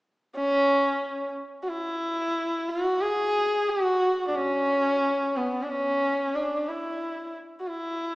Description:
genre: indian classical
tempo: 90 BPM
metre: 4/4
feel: straight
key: C# raga bhairavi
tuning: A4 = 440 Hz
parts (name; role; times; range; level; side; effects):
- dark sarangi; solo; 0.4-8.2 s; B3 to G#4; -24 LUFS; equal; none
room: wet recital hall reverb, RT60 1.6 s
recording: recorded in a church or concert hall, small speaker sound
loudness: -24 LUFS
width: side -20 dB against mid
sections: 0.4-8.2 A section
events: none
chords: none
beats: | 0.36 1.03 1.69 2.36 | 3.02 3.69 4.36 5.02 | 5.68 6.35 7.01 7.67

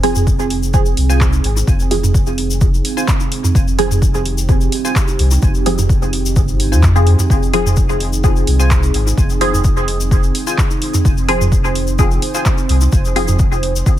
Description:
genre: dub techno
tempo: 128 BPM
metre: 4/4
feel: straight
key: F minor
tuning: A4 = 439 Hz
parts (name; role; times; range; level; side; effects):
- dark analog pad; sustained chords; 0.0-14.0 s; C4 to C5; -23 LUFS; right 5 dB; chorus, sidechain pumping
- filtered dub chord stab; stabs; 0.0-13.4 s; F3 to Ab4; -20 LUFS; equal; chorus, phaser, sidechain pumping, dub echo
- soft dub sub bass; bass; 0.0-13.8 s; F1 to F2; -16 LUFS; equal; tube saturation, sidechain pumping
- deep house drum kit; drums; 0.0-13.7 s; handclaps, hi-hat; -24 LUFS; equal; overdrive, dub echo
- electronic toms and congas; percussion; 0.2-13.4 s; none; -20 LUFS; right 1 dB; sidechain pumping on toms, sidechain pumping on perc
- tube shaker; percussion; 0.2-14.0 s; none; -27 LUFS; left 6 dB; none
- electronic kick drum; drums; 0.3-14.0 s; none; -15 LUFS; equal; none
- wavetable chord stab; riff; 1.1-12.4 s; F4 to Ab5; -27 LUFS; left 2 dB; cassette tape, sidechain pumping, dub echo
room: digital ambience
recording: none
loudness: -12 LUFS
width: side -13 dB against mid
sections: 0.0-14.0 A section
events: filter sweep on synth stab 0.0-14.0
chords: 0.0 Fm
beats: 0.27 0.74 1.21 | 1.68 2.15 2.61 3.08 | 3.55 4.02 4.49 4.96 | 5.43 5.89 6.36 6.83 | 7.30 7.77 8.24 8.71 | 9.18 9.64 10.11 10.58 | 11.05 11.52 11.99 12.46 | 12.93 13.39 13.86

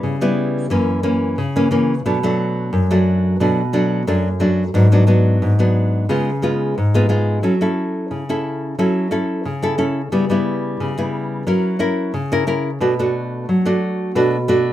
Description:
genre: samba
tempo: 89 BPM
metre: 4/4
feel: straight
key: F# minor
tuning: A4 = 440 Hz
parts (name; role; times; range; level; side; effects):
- nylon-string guitar; solo; 0.0-14.7 s; F#2 to A#4; -16 LUFS; equal; none
room: wet studio reverb, RT60 0.5 s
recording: minimal, uncompressed stereo recording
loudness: -16 LUFS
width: side -13 dB against mid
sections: 0.0-14.7 A section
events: none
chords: 0.0 C#m7b5; 0.7 F#7; 2.1 Bm7; 4.7 G#m7b5; 6.1 C#7; 7.4 F#m7; 10.1 C#m7b5; 11.5 F#7; 12.8 Bm7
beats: 0.04 0.71 1.38 | 2.06 2.73 3.40 4.08 | 4.75 5.42 6.09 6.77 | 7.44 8.11 8.78 9.46 | 10.13 10.80 11.47 12.14 | 12.82 13.49 14.16

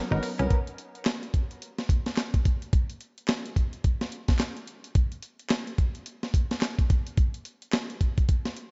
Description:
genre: R&B, new jack swing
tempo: 108 BPM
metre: 4/4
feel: swing 60% on 16ths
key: G# minor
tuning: A4 = 438 Hz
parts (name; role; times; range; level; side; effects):
- bell-like tine electric piano; accompaniment; 0.0-0.5 s; F#3 to A#4; -41 LUFS; equal; none
- direct-recorded clean electric guitar; riff; 0.1-0.5 s; C#4 to D#4; -38 LUFS; equal; subtle chorus
- dark horn section; stabs; 0.1-0.6 s; B3 to A#4; -39 LUFS; equal; tape echo
- solid FM bass; bass; 0.1-0.5 s; G#1 to B#1; -29 LUFS; equal; none
- breakbeat sampler-style drum kit; drums; 0.2-8.7 s; handclaps, hi-hat, kick drum, snare drum, tambourine; -27 LUFS; equal; none
room: digital ambience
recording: nothing above 7.8 kHz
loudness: -28 LUFS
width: mono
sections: 0.5-8.7 A section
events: break 0.0-0.5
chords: 0.0 G#m11; 0.5 N.C.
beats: | 0.51 1.06 1.62 2.17 | 2.73 3.28 3.84 4.39 | 4.95 5.51 6.06 6.62 | 7.17 7.73 8.28

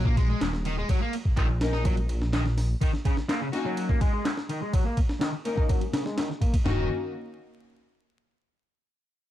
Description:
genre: breakbeat, breaks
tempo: 125 BPM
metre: 4/4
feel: straight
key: Eb minor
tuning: A4 = 439 Hz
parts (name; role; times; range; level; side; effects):
- fuzz guitar; riff; 0.0-6.9 s; Db3 to Eb4; -32 LUFS; equal; distortion, low-pass filter, digital delay
- dark detuned saw bass; bass; 0.0-2.8, 6.7-6.9 s; Eb1 to Bb1; -27 LUFS; equal; none
- breakbeat sampler-style drum kit; drums; 0.1-6.8 s; hi-hat, kick drum, ride cymbal, snare drum, toms; -26 LUFS; equal; studio reverb
- electronic handclaps; drums; 0.4-6.3 s; none; -36 LUFS; equal; low-pass filter on hats, studio reverb, low-pass filter on snare, low-pass filter on room
- warm studio string section; stabs; 1.6-6.8 s; Bb3 to Bb4; -33 LUFS; left 3 dB; low-pass filter, digital delay
room: light reverb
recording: dark, warm production, vinyl crackle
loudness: -24 LUFS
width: side -13 dB against mid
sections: 0.0-6.7 A section; 6.7-8.6 B section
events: filter sweep on drum 0.0-6.7; filter sweep on distorted electric guitar 0.0-6.7; filter sweep on string section 0.0-6.7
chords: 0.0 Eb5; 6.7 N.C.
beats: 0.41 | 0.89 1.37 1.85 2.33 | 2.81 3.29 3.77 4.25 | 4.73 5.21 5.69 6.17 | 6.65

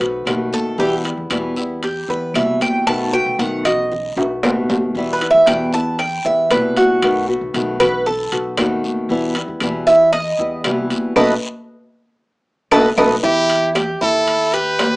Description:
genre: latin, Cuban son and guajira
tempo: 116 BPM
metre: 4/4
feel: straight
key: E harmonic minor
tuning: A4 = 440 Hz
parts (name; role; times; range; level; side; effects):
- nylon-string guitar; accompaniment; 0.0-13.1 s; B2 to F#4; -20 LUFS; left 1 dB; plate reverb
- Cuban tres; arpeggios; 0.0-15.0 s; E4 to A5; -16 LUFS; right 1 dB; plate reverb
- upright bass; bass; 0.0-15.0 s; B1 to A2; -30 LUFS; equal; none
- congas; percussion; 0.0-15.0 s; none; -26 LUFS; equal; none
- timbales; percussion; 0.0-15.0 s; none; -22 LUFS; right 1 dB; none
- claves; percussion; 0.3-15.0 s; none; -28 LUFS; left 1 dB; none
- guiro; percussion; 0.3-15.0 s; none; -33 LUFS; left 2 dB; none
- brilliant trumpet; melody; 13.2-15.0 s; G4 to B4; -18 LUFS; equal; none
- flamenco guitar; second line; 13.2-15.0 s; E4 to G4; -24 LUFS; left 1 dB; plate reverb
room: moderate small room reverb, RT60 0.5 s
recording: rough home demo mix, small speaker sound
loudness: -15 LUFS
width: side -23 dB against mid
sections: 0.0-13.2 A section; 13.2-15.0 B section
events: Cuban tres solo 0.0-13.2; drum fill 4.2-4.9, 12.5-13.2; band accent 11.2-13.2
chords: 0.0 B7; 0.8 Em; 2.9 B7; 4.9 Em; 7.0 B7; 9.1 Em; 11.2 B7; 13.2 Em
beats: 0.27 | 0.79 1.31 1.83 2.35 | 2.87 3.39 3.91 4.43 | 4.95 5.47 5.99 6.50 | 7.02 7.54 8.06 8.58 | 9.10 9.62 10.13 10.65 | 11.17 11.69 12.21 12.72 | 13.24 13.76 14.28 14.79

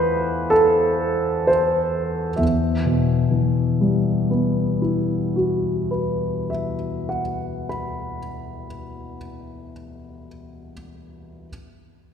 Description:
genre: classical, impressionist solo piano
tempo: 19-28 BPM (dotted quarters)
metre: 9/8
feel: rubato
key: E minor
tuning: A4 = 439 Hz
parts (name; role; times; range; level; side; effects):
- clear grand piano; solo; 0.0-11.5 s; E2 to B5; -20 LUFS; left 1 dB; none
room: wet concert hall reverb, RT60 2.6 s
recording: recorded in a church or concert hall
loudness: -19 LUFS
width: side -8 dB against mid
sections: 0.0-2.4 A section; 2.4-9.3 B section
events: slowing down 0.0-2.4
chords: 0.0 Fmaj7#11/E; 2.4 Emadd9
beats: | 2.40 4.70 7.04

